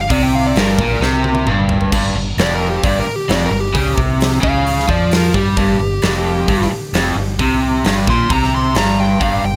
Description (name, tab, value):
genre	blues rock power trio and southern rock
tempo	132 BPM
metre	4/4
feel	straight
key	G minor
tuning	A4 = 438 Hz
part	smooth overdriven lead guitar	second line	0.0-9.6 s	G4 to C6	-23 LUFS	equal	analog delay
part	overdriven electric guitar	riff	0.0-9.6 s	F2 to G3	-19 LUFS	equal	none
part	woody fretless electric bass	bass	0.0-9.6 s	F1 to G2	-23 LUFS	equal	none
part	big rock drum kit	drums	0.1-9.3 s	crash cymbal, hi-hat, kick drum, snare drum, toms	-22 LUFS	equal	none
room	light reverb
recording	none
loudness	-15 LUFS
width	mono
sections	0.0-1.9 A section; 1.9-9.6 A section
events	lead electric guitar solo 0.0-9.6; drum fill 1.0-1.9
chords	0.0 Gm; 1.9 N.C.